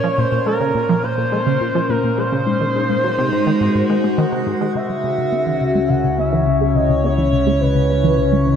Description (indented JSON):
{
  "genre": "ambient, sequencer-driven space music",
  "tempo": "105 BPM",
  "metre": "4/4",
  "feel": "straight",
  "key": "C# minor from 4.8 s",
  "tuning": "A4 = 439 Hz",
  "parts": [
    { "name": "expressive portamento lead", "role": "melody", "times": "0.0-8.6 s", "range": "Bb4 to F#5", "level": "-20 LUFS", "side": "equal", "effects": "lush chorus, tape echo" },
    { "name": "evolving wavetable pad", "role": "sustained chords", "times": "0.0-8.6 s", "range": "Bb2 to C#5", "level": "-20 LUFS", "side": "equal", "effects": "phaser, built-in reverb" },
    { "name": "tight sequenced synth", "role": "riff", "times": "0.0-8.5 s", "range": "Ab2 to B3", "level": "-21 LUFS", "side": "equal", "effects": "chorus, phaser, tape echo" },
    { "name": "analog drone", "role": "bass", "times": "5.7-8.6 s", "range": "C#2", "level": "-20 LUFS", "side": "left 1 dB", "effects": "chorus" }
  ],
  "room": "wet plate reverb, RT60 3.3 s",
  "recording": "dreamy mix soaked in reverb",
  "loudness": "-15 LUFS",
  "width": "side -8 dB against mid",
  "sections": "0.0-4.8 A section; 4.8-8.6 B section",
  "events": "filter sweep on synth arpeggio sound 4.8-8.6",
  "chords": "0.0 Bbmadd9; 2.5 Ab7; 4.8 C#m",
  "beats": "| 0.18 0.75 1.33 1.90 | 2.47 3.04 3.61 4.18 | 4.75 5.33 5.90 6.47 | 7.04 7.61 8.18"
}